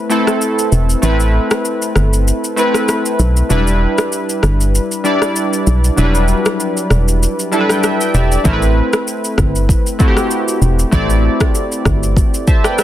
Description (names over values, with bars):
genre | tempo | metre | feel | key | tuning
afrobeats | 97 BPM | 4/4 | swing 55% on 16ths | A minor | A4 = 436 Hz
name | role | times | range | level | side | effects
warm analog keys | accompaniment | 0.0-12.8 s | F#3 to A5 | -16 LUFS | equal | chorus
deep house drum kit | drums | 0.1-12.8 s | kick drum, rim click, shaker | -16 LUFS | equal | overdrive
organ-like FM bass | bass | 0.7-12.2 s | E1 to B1 | -13 LUFS | equal | none
room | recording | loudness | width
little or no reverb | dense, heavily limited modern master | -12 LUFS | side -12 dB against mid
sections
0.0-12.8 A section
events
break 0.0-8.5; synth keys fill 7.2-8.5, 12.2-12.8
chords
0.0 Amadd9; 3.5 Em7; 8.5 Amadd9